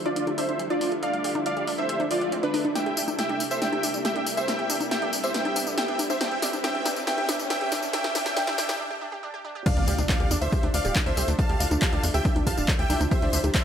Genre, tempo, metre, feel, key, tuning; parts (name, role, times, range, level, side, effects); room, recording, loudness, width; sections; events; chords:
uplifting trance; 139 BPM; 4/4; straight; D dorian; A4 = 444 Hz
lush unison pad; sustained chords; 0.0-13.6 s; C3 to E4; -35 LUFS; left 1 dB; chorus, sidechain pumping
riser and impact; sound effects; 0.0-11.4 s; -35 LUFS; equal
dense compressed supersaw; melody; 0.1-13.6 s; D4 to A5; -28 LUFS; equal; sidechain pumping, low-pass filter, digital delay
supersaw stab; second line; 0.1-13.6 s; B4 to A5; -35 LUFS; right 1 dB
wide unison pluck; arpeggios; 0.1-13.6 s; C4 to D5; -32 LUFS; right 4 dB; vintage 12-bit sampler grit, sidechain pumping, digital delay
punchy analog drum machine; drums; 0.1-13.6 s; congas, crash cymbal, handclaps, hi-hat, snare drum, tambourine; -29 LUFS; left 2 dB; overdrive, sidechain pumping on hats, sidechain pumping on perc, sidechain pumping on cymbals
electronic kick drum; drums; 9.7-13.6 s; -25 LUFS; equal; overdrive
tight sequencer bass; bass; 9.8-13.5 s; D1 to E2; -26 LUFS; equal; sidechain pumping
moderate lush hall reverb, RT60 2.0 s; high-pass filter; -23 LUFS; side -8 dB against mid
0.0-9.7 A section; 9.7-13.6 B section
build-up 0.0-9.7; riser 0.0-8.8; filter sweep on supersaw synth 0.0-9.7; filter sweep on synth arpeggio sound 0.0-9.7; filter sweep 0.0-9.7; drum fill 2.8-8.8; break 8.8-9.7; drop 9.7-13.6; impact 9.7-11.4
0.0 Dmadd9; 2.8 Am7; 6.2 Em7; 9.7 Dmadd9